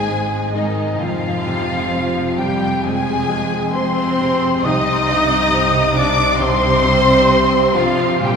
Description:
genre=cinematic, emotional film score for orchestra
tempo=66 BPM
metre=4/4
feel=rubato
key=unclear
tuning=A4 = 440 Hz
part: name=warm symphonic violin section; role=melody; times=0.0-8.4 s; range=Eb5 to Eb6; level=-21 LUFS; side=left 3 dB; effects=none
part: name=hollow concert flute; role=second line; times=0.0-8.4 s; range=Eb5 to Eb6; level=-23 LUFS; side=left 1 dB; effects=none
part: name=rich studio violin section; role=second line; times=0.0-8.4 s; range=Eb4 to Eb5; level=-21 LUFS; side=equal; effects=none
part: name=clear grand piano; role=accompaniment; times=0.0-8.4 s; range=C2 to C4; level=-23 LUFS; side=equal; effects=none
part: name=clear symphonic viola section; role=accompaniment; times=0.0-8.4 s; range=Eb3 to Eb4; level=-25 LUFS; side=right 1 dB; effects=none
part: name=warm French horn section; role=sustained chords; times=0.0-8.4 s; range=Eb3 to Eb4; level=-23 LUFS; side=left 1 dB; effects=none
part: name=rich symphonic double bass section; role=bass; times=0.0-8.4 s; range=F1 to C2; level=-26 LUFS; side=right 3 dB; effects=none
part: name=warm studio cello section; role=bass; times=0.0-8.4 s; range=F2 to C3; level=-25 LUFS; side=right 3 dB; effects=none
room=wet cathedral reverb, RT60 4.3 s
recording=recorded in a church or concert hall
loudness=-14 LUFS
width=side -6 dB against mid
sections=0.0-8.4 A section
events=none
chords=0.0 Ab; 1.0 Fm; 4.6 Cm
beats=0.08 | 1.00 1.93 2.84 3.74 | 4.65 5.53 6.42 7.31 | 8.22

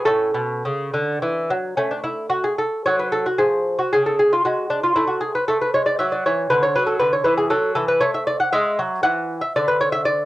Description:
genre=classical, baroque-style dance for lute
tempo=102-120 BPM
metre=3/4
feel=rubato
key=F# minor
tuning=A4 = 440 Hz
part: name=lute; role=solo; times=0.0-10.3 s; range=A2 to F#5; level=-18 LUFS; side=equal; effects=cassette tape
room=light reverb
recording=home recording on cassette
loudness=-18 LUFS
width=side -16 dB against mid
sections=0.0-1.8 A section; 1.8-10.3 A section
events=none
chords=0.0 A; 1.8 F#m/A; 3.4 C#; 5.0 F#m/A; 6.5 D; 8.0 A5; 9.6 N.C.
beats=| 0.05 0.64 1.22 | 1.79 2.32 2.86 | 3.39 3.92 4.44 | 4.95 5.47 5.98 | 6.50 7.01 7.52 | 8.04 8.54 9.05 | 9.56 10.07

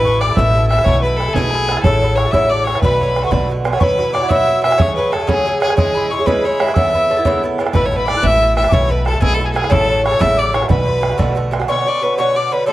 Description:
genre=celtic folk, Celtic jig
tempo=122 BPM (dotted quarters)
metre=6/8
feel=straight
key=B dorian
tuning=A4 = 440 Hz
part: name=clear fiddle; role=melody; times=0.0-12.7 s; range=G#4 to E5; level=-18 LUFS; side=equal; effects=none
part: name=mellow tin whistle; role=second line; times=0.0-12.7 s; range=F#5 to F#6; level=-22 LUFS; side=left 5 dB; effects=none
part: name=Irish bouzouki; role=accompaniment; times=0.0-12.7 s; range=A2 to A4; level=-19 LUFS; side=right 1 dB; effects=none
part: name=upright bass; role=bass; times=0.0-3.7, 7.7-11.6 s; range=A1 to B1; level=-19 LUFS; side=left 1 dB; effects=none
part: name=bodhran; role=percussion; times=0.1-11.7 s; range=none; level=-20 LUFS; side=right 2 dB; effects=none
room=little or no reverb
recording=dry, close 1970s-style studio recording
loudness=-13 LUFS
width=side -15 dB against mid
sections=0.0-3.8 A section; 3.8-11.7 A section; 11.7-12.7 B section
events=none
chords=0.0 Asus2; 0.9 Esus4/B; 1.8 A6; 2.8 Bm7; 3.8 Esus2; 4.8 F#madd9; 5.8 C#m; 6.8 Aadd9; 7.7 Asus2; 8.7 Esus4/B; 9.7 A6; 10.7 Bm7; 11.7 Bmadd9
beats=0.36 | 0.86 1.35 | 1.84 2.33 | 2.82 3.31 | 3.81 4.30 | 4.79 5.28 | 5.77 6.26 | 6.76 7.25 | 7.74 8.23 | 8.73 9.22 | 9.71 10.21 | 10.70 11.19 | 11.69 12.18 | 12.67

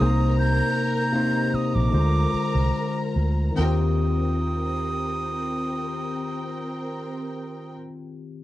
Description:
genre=soul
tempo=71-80 BPM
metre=4/4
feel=swing 54% on 16ths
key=Eb major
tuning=A4 = 440 Hz
part: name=breathy silver concert flute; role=melody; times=0.0-7.7 s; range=D6 to G6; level=-30 LUFS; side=right 2 dB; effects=none
part: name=warm studio string section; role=second line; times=0.0-7.7 s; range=C4 to Bb5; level=-32 LUFS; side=equal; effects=none
part: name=overdriven tine electric piano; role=accompaniment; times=0.0-8.4 s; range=C3 to C5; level=-26 LUFS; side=left 2 dB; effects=wide subtle chorus
part: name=vintage muted fingered electric bass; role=bass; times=0.0-7.8 s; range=Bb1 to Eb2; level=-23 LUFS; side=equal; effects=none
room=little or no reverb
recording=dry, close 1970s-style studio recording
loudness=-22 LUFS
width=side -15 dB against mid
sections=0.0-3.6 A section; 3.6-7.0 B section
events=slowing down 0.0-3.6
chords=0.0 Cm7; 1.9 Bb9; 3.6 Eb69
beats=| 0.38 1.15 1.94 2.75 | 3.58 4.43 5.28 6.13

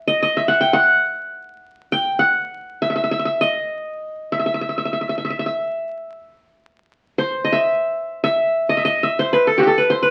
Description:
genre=Arabic maqam ensemble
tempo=free time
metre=none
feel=none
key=unclear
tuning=A4 = 440 Hz
part: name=qanun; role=solo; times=0.0-10.1 s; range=F#4 to G5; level=-20 LUFS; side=equal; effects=none
room=wet studio reverb, RT60 0.7 s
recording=very old 78 rpm record, vinyl crackle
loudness=-19 LUFS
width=mono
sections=0.0-10.1 A section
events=none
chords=none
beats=free time

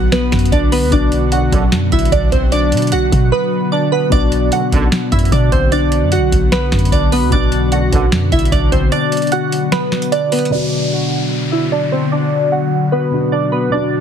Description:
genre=hip hop, trap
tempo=150 BPM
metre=4/4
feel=half-time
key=B minor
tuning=A4 = 440 Hz
part: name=glassy digital keys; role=melody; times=0.0-14.0 s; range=B3 to F#5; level=-17 LUFS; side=right 1 dB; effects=chorus, phaser, low-pass filter
part: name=dark concert grand piano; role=accompaniment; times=0.0-14.0 s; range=B2 to F#4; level=-23 LUFS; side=left 4 dB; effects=low-pass filter
part: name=ethereal airy pad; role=sustained chords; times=0.0-14.0 s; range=D3 to F#4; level=-19 LUFS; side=left 2 dB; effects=ensemble chorus, built-in reverb, low-pass filter
part: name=warm 808-style bass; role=bass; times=0.0-8.9 s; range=B1 to B2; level=-17 LUFS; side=equal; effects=none
part: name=booming analog drum machine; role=drums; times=0.1-10.5 s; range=hi-hat, kick drum, snare drum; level=-17 LUFS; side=equal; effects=none
part: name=mellow brass ensemble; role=stabs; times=1.3-1.6, 4.5-4.8, 7.7-8.0 s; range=B1 to D3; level=-23 LUFS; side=right 6 dB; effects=none
part: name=downlifter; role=sound effects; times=10.5-13.7 s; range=none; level=-26 LUFS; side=left 1 dB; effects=none
room=light reverb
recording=heavily compressed radio sound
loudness=-12 LUFS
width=side -8 dB against mid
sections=0.0-10.5 A section; 10.5-14.0 B section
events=drums muted 3.3-4.1; break 8.9-10.5; filter sweep 10.5-14.0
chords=0.0 Bm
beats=0.12 0.52 | 0.92 1.32 1.72 2.12 | 2.52 2.92 3.32 3.72 | 4.12 4.52 4.92 5.32 | 5.72 6.12 6.52 6.92 | 7.32 7.72 8.12 8.52 | 8.92 9.32 9.72 10.12 | 10.52 10.92 11.32 11.72 | 12.12 12.52 12.92 13.32 | 13.72

